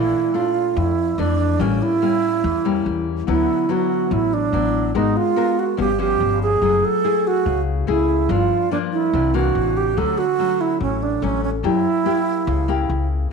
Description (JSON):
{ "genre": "bossa nova", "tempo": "144 BPM", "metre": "4/4", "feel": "straight", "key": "unclear", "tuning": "A4 = 440 Hz", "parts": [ { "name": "bright reedy wooden-headed alto flute", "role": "melody", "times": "0.0-13.1 s", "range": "C#4 to A4", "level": "-20 LUFS", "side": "right 8 dB", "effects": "none" }, { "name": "nylon-string guitar", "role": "accompaniment", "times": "0.0-13.3 s", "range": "F2 to A#4", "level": "-23 LUFS", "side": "left 12 dB", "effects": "none" }, { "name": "upright bass", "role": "bass", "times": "0.0-13.3 s", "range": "F#1 to F#2", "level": "-23 LUFS", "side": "left 2 dB", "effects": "none" } ], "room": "moderate echo chamber reverb, RT60 1.3 s, studio reverb", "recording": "1960s-style stereo with parts hard left and right", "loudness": "-17 LUFS", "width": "side -5 dB against mid", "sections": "0.0-13.3 A section", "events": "none", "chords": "0.0 Bbmaj7#11; 1.6 A7b9; 3.3 D69; 4.9 G#m9; 5.8 G7#11; 6.6 F#m9; 8.3 Gm7; 9.1 C9; 10.0 Dmaj7; 11.6 F#7b9" }